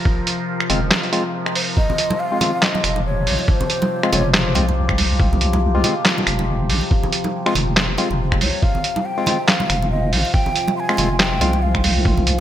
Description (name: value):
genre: deep dubstep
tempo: 140 BPM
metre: 4/4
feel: swing 57% on 16ths, half-time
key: F minor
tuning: A4 = 440 Hz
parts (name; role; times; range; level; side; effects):
- overtone-sweeping drone; sustained chords; 0.0-12.4 s; C3 to Bb4; -26 LUFS; left 2 dB; chorus, built-in reverb
- electronic kick drum; drums; 0.1-12.2 s; none; -18 LUFS; equal; none
- trip hop sampler-style drum kit; drums; 0.3-12.4 s; finger snaps, handclaps, hi-hat, snare drum; -20 LUFS; right 1 dB; none
- percussive organ stab; stabs; 0.7-11.5 s; Ab3 to F4; -24 LUFS; left 2 dB; chorus, dub echo
- deep soft wobble bass; bass; 0.7-12.4 s; F1 to C2; -20 LUFS; equal; chorus, tube saturation
- breathy mellow ney; melody; 1.6-4.9, 8.4-11.8 s; C5 to C6; -25 LUFS; left 1 dB; dub echo
- congas; percussion; 1.9-12.2 s; none; -27 LUFS; right 3 dB; none
room: moderate lush hall reverb, RT60 1.6 s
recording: bright 1980s-style digital production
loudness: -16 LUFS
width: side -11 dB against mid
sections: 0.0-12.4 A section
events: kick drops out 0.9-1.8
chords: 0.0 Fm